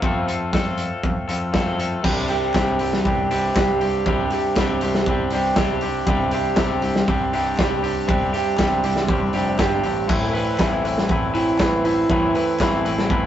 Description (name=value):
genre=indie rock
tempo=119 BPM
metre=4/4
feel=straight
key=unclear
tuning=A4 = 442 Hz
part: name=twangy electric guitar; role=riff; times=0.0-13.3 s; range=A2 to B4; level=-22 LUFS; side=left 2 dB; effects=none
part: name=growling picked electric bass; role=bass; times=0.0-13.3 s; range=F1 to F2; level=-29 LUFS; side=equal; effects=overdrive
part: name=raw garage drum kit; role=drums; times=0.0-13.2 s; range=crash cymbal, hi-hat, kick drum, snare drum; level=-23 LUFS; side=equal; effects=none
part: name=electric guitar through a small old amp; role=riff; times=2.0-13.3 s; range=A2 to B4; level=-24 LUFS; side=right 4 dB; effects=none
part: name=group handclap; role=percussion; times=2.5-12.7 s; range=none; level=-38 LUFS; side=equal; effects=none
room=moderate stone room reverb, RT60 1.1 s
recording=rough rehearsal-room recording, nothing above 7.9 kHz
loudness=-18 LUFS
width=side -11 dB against mid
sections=0.0-2.0 A section; 2.0-13.3 B section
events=none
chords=0.0 F; 2.0 Csus2; 10.1 Amadd9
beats=| 0.01 0.52 1.03 1.54 | 2.04 2.55 3.05 3.56 | 4.06 4.56 5.07 5.57 | 6.07 6.58 7.08 7.58 | 8.08 8.58 9.09 9.59 | 10.09 10.59 11.09 11.59 | 12.10 12.60 13.10